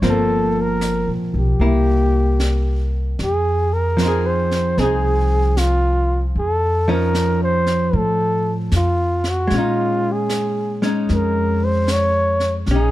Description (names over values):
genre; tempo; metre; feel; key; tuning
jazz ballad; 76 BPM; 4/4; swing 66% on 8ths; unclear; A4 = 440 Hz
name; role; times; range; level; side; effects
archtop guitar, miked and amplified; accompaniment; 0.0-12.9 s; F3 to Ab4; -21 LUFS; left 1 dB; none
upright bass; bass; 0.0-12.9 s; G1 to Bb2; -20 LUFS; equal; none
jazz brush drum kit; drums; 0.0-12.9 s; brushed snare drum, hi-hat, snare drum; -31 LUFS; right 1 dB; none
warm flugelhorn; melody; 0.1-12.9 s; F4 to Db5; -20 LUFS; equal; none
room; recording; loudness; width
little or no reverb; dark, warm production; -16 LUFS; side -15 dB against mid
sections
0.0-12.9 A section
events
none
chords
0.0 Gm7; 1.6 C7; 3.2 Fm7; 6.4 F7b13; 9.5 Bbm7